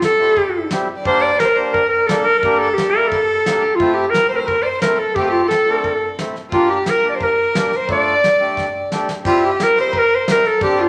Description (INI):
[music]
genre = klezmer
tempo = 88 BPM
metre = 2/4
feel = straight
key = unclear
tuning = A4 = 437 Hz
[part]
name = clear clarinet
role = melody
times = 0.0-10.9 s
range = F4 to D5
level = -18 LUFS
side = equal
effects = none
[part]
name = bright violin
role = second line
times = 0.0-10.9 s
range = F4 to D5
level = -31 LUFS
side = equal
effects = none
[part]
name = soft brush drum kit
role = drums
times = 0.0-10.8 s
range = crash cymbal, kick drum, snare drum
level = -29 LUFS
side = equal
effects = none
[part]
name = accordion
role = accompaniment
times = 0.2-10.9 s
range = G3 to G4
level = -25 LUFS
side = equal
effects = none
[sound]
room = wet large studio reverb, RT60 1.4 s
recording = none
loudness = -16 LUFS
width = mono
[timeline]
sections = 0.0-9.3 A section; 9.3-10.9 A section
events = drum fill 8.6-9.3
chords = 0.0 C; 1.1 Gm; 3.8 Am; 6.5 Gm; 7.9 Dm; 9.3 C